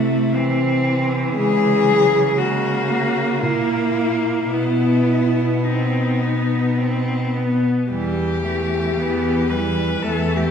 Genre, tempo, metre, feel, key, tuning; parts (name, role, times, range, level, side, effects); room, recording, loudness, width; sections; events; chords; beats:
classical, lyrical piece for cello ensemble; 52-60 BPM; 3/4; rubato; A4 = 440 Hz
clear cello; melody; 0.0-10.5 s; D#4 to B4; -21 LUFS; left 3 dB
rich cello; second line; 0.0-10.5 s; E3 to B3; -25 LUFS; right 4 dB
rich cello; accompaniment; 0.0-10.5 s; F#3 to C4; -22 LUFS; left 2 dB
rich cello; bass; 0.0-10.5 s; E2 to C#3; -23 LUFS; right 1 dB
wet recital hall reverb, RT60 1.4 s; heard from further back in the room; -17 LUFS; side -7 dB against mid
0.0-10.5 A section
0.0 Am/C; 1.4 F#7/C#; 4.5 B; 7.9 Em
0.35 | 1.38 2.38 3.41 | 4.52 5.65 6.78 | 7.91 8.97 10.02